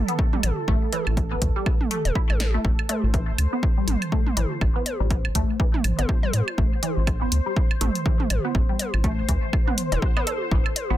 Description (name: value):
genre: minimal techno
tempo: 122 BPM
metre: 4/4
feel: swing 58% on 16ths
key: A minor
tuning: A4 = 442 Hz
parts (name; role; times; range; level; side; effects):
- rubbery square bass; bass; 0.0-11.0 s; E1 to A2; -23 LUFS; equal; sidechain pumping
- bubbling stepped-filter texture; texture; 0.0-11.0 s; A4 to C5; -34 LUFS; left 2 dB; chorus, built-in reverb, sidechain pumping
- resonant blip pluck; riff; 0.1-11.0 s; E3 to A4; -29 LUFS; equal; phaser, analog chorus, sidechain pumping, digital delay
- punchy analog drum machine; drums; 0.1-10.9 s; hi-hat, snare drum; -28 LUFS; left 1 dB; none
- electronic kick drum; drums; 0.2-10.6 s; none; -22 LUFS; equal; none
- electronic toms and woodblock; percussion; 0.3-10.9 s; none; -30 LUFS; right 3 dB; overdrive, dub echo
room: light reverb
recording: dense, heavily limited modern master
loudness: -20 LUFS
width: side -13 dB against mid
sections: 0.0-11.0 A section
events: drum fill 2.4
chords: 0.0 Am